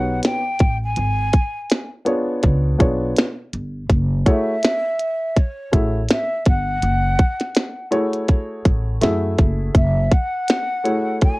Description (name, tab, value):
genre	hip hop, jazz-hop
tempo	82 BPM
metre	4/4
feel	swing 57% on 16ths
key	F# minor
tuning	A4 = 440 Hz
part	breathy mellow jazz flute	melody	0.0-11.4 s	C#5 to G#5	-23 LUFS	equal	none
part	dark baby grand piano	accompaniment	0.0-11.4 s	A3 to E5	-21 LUFS	equal	none
part	upright bass	bass	0.0-10.1 s	F#1 to F#2	-21 LUFS	equal	none
part	glitchy drum kit	drums	0.2-11.4 s	hi-hat, kick drum, snare drum	-17 LUFS	equal	none
room	light reverb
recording	worn, warbling old tape, cassette tape, warbly pitch drift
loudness	-17 LUFS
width	side -22 dB against mid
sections	0.0-9.7 A section; 9.7-11.4 B section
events	none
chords	0.0 D#7alt; 1.0 G#dim; 2.4 C#7b9; 3.9 F#m9